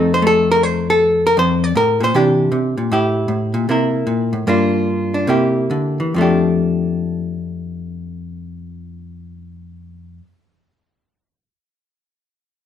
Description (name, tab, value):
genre	solo jazz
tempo	133-158 BPM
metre	4/4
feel	swing 65% on 8ths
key	F major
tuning	A4 = 436 Hz
part	hollow-body jazz guitar	solo	0.0-10.3 s	F2 to D5	-15 LUFS	left 1 dB	none
room	moderate large studio reverb, RT60 1.1 s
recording	minimal, uncompressed stereo recording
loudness	-14 LUFS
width	side -9 dB against mid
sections	0.0-2.9 A section; 2.9-6.2 B section; 6.2-9.8 C section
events	slowing down 2.9-6.2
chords	0.0 F7; 2.1 C9; 2.9 A5; 3.7 C7; 4.5 Gm7; 5.3 C7; 6.2 F69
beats	0.23 0.61 0.99 | 1.37 1.75 2.14 2.52 | 2.90 3.28 3.67 4.06 | 4.46 4.86 5.28 5.71 | 6.15 6.60 7.05 7.50 | 7.95 8.40 8.85 9.30